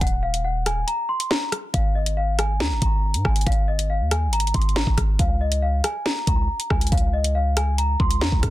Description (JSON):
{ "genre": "hip hop, drill", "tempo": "139 BPM", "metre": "4/4", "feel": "half-time", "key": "unclear", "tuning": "A4 = 439 Hz", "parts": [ { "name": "celesta", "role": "melody", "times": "0.0-8.4 s", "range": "Eb5 to C6", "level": "-26 LUFS", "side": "left 1 dB", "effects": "low-pass filter, digital delay" }, { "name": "hard-hitting 808-style bass", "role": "bass", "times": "0.0-8.5 s", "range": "Eb1 to Ab2", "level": "-23 LUFS", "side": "equal", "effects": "none" }, { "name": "drill drum kit", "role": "drums", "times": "0.0-8.5 s", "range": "hi-hat, kick drum, rim click, snare drum", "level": "-22 LUFS", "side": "equal", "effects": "none" } ], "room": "little or no reverb", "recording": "dense, heavily limited modern master", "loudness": "-19 LUFS", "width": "side -16 dB against mid", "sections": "0.0-8.5 A section", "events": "kick muted 0.9-1.7", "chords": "0.0 Eb5; 1.7 Absus2; 5.2 Db" }